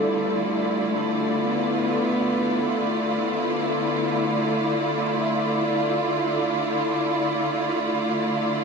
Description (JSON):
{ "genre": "ambient", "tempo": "free time", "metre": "none", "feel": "none", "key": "D dorian", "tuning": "A4 = 440 Hz", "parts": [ { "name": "warm cello", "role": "melody", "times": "0.0-3.2 s", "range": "G3 to B3", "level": "-30 LUFS", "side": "left 1 dB", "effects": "ping-pong delay" }, { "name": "clear studio string section", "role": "sustained chords", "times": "0.0-8.6 s", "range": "D3 to D5", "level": "-22 LUFS", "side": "equal", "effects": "none" }, { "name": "soft round pluck", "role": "arpeggios", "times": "0.0-8.6 s", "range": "A3 to E5", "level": "-34 LUFS", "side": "equal", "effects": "none" } ], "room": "wet shimmer reverb, RT60 7.8 s", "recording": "none", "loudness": "-21 LUFS", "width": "side -5 dB against mid", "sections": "0.0-8.6 A section", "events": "none", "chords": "0.0 Dmadd9" }